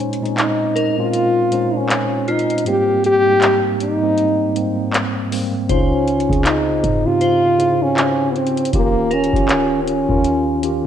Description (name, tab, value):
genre	contemporary R&B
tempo	79 BPM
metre	4/4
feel	swing 58% on 16ths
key	Bb dorian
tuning	A4 = 440 Hz
part	mellow French horn	melody	0.0-10.9 s	Bb3 to G4	-17 LUFS	equal	tape echo
part	mellow tine electric piano	accompaniment	0.0-10.9 s	Ab2 to C5	-20 LUFS	equal	medium stereo tremolo
part	booming analog drum machine	drums	0.0-10.8 s	handclaps, hi-hat, kick drum	-21 LUFS	equal	none
part	glassy synth bell	texture	0.8-10.9 s	F4 to C5	-27 LUFS	right 1 dB	chorus, phaser, tape echo
part	clean 808-style bass	bass	5.7-10.8 s	Eb1 to Ab2	-27 LUFS	equal	none
room	moderate lush hall reverb, RT60 2.0 s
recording	rough home demo mix, cassette tape, faint mains hum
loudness	-14 LUFS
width	side -9 dB against mid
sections	0.0-10.9 A section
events	break 0.0-5.7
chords	0.0 Bbm11; 2.7 Abmaj9; 5.7 Dbmaj9; 8.7 Eb9